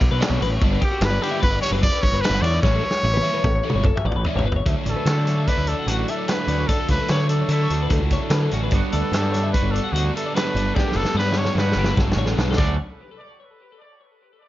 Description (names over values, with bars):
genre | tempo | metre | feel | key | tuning
math rock and midwest emo | 148 BPM | 5/4 | straight | D major | A4 = 441 Hz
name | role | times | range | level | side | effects
twelve-string electric guitar | arpeggios | 0.0-12.8 s | F#4 to F#5 | -30 LUFS | left 8 dB | tape echo
biting overdriven guitar | riff | 0.0-12.7 s | G2 to E4 | -29 LUFS | right 1 dB | none
growling picked electric bass | bass | 0.0-12.8 s | F#1 to D3 | -22 LUFS | equal | overdrive
loose indie drum kit | drums | 0.0-12.7 s | crash cymbal, hi-hat, kick drum, ride cymbal, snare drum, toms | -23 LUFS | equal | none
clear trumpet | melody | 0.8-12.8 s | F#4 to D5 | -26 LUFS | equal | none
twangy electric guitar | accompaniment | 4.7-12.8 s | D2 to A4 | -32 LUFS | right 6 dB | none
room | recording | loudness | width
little or no reverb | dark, warm production, nothing above 7.4 kHz | -18 LUFS | side -15 dB against mid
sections
0.0-4.7 A section; 4.7-12.8 B section; 12.8-14.5 C section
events
drum fill 2.6-4.7, 10.8-12.8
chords
0.0 Bm9; 0.6 Gmaj7; 2.6 A9; 4.7 Dmaj9; 8.7 Gmaj7; 12.6 Dmaj7; 12.8 N.C.